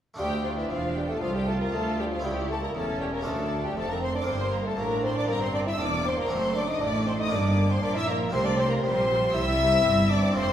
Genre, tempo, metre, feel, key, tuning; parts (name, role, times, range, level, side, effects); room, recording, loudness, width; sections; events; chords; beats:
classical, baroque-style concerto movement with solo episodes; 118 BPM; 4/4; straight; D minor; A4 = 440 Hz
harpsichord; accompaniment; 0.1-10.5 s; C2 to Bb4; -38 LUFS; right 1 dB
mellow bassoon; melody; 0.2-10.5 s; E3 to E4; -29 LUFS; left 1 dB
warm symphonic violin section; melody; 0.2-10.5 s; E5 to E6; -33 LUFS; left 1 dB
dark chamber violin section; second line; 0.2-10.5 s; E4 to E5; -31 LUFS; left 3 dB
rich chamber viola section; accompaniment; 0.2-10.5 s; G3 to F4; -33 LUFS; right 2 dB
warm chamber cello section; bass; 0.2-10.5 s; C2 to C3; -31 LUFS; right 1 dB
warm symphonic double bass section; bass; 0.2-10.5 s; E1 to D2; -32 LUFS; right 2 dB
wet recital hall reverb, RT60 1.5 s; recorded in a church or concert hall; -23 LUFS; side -10 dB against mid
0.2-10.5 A section
0.2 Dm; 2.2 A/C#; 3.3 Dm; 4.3 Gm; 6.3 D/F#; 7.3 Gm; 8.3 C7
| 0.18 0.70 1.22 1.73 | 2.24 2.75 3.26 3.77 | 4.28 4.78 5.29 5.79 | 6.30 6.81 7.31 7.82 | 8.33 8.83 9.34 9.85 | 10.37